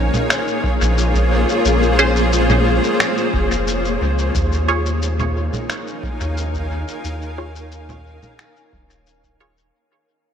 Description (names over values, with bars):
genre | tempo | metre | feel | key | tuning
ambient dub | 89 BPM | 4/4 | straight | unclear | A4 = 441 Hz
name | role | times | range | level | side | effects
granular cloud pad | sustained chords | 0.0-9.7 s | Bb3 to Ab5 | -20 LUFS | left 1 dB | built-in reverb
soft dub sub bass | bass | 0.0-9.7 s | Eb1 to Eb2 | -20 LUFS | equal | tube saturation
electronic congas, shaker and finger snaps | drums | 0.1-9.7 s | none | -23 LUFS | equal | dub echo
electronic kick drum | drums | 0.6-9.4 s | none | -24 LUFS | equal | overdrive
filtered dub chord stab | stabs | 2.0-9.5 s | Db4 to Db5 | -22 LUFS | right 1 dB | phaser, dub echo
room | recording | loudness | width
light reverb | none | -16 LUFS | side -8 dB against mid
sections
0.0-9.7 A section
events
fade-out 2.5-9.7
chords
0.0 Bbm7; 4.3 Eb7sus4